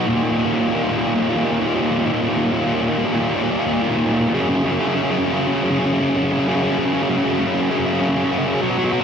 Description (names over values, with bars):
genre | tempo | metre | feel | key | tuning
rock | 112 BPM | 4/4 | straight | Eb minor | A4 = 438 Hz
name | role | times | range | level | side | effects
distorted electric guitar | solo | 0.0-9.0 s | Eb2 to F#3 | -17 LUFS | equal | distortion, tape echo
room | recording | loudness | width
moderate huge ambient reverb, RT60 7.2 s | none | -17 LUFS | side -7 dB against mid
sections
0.1-9.0 A section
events
build-up 0.1-9.0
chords
0.1 Eb5; 4.3 Gb5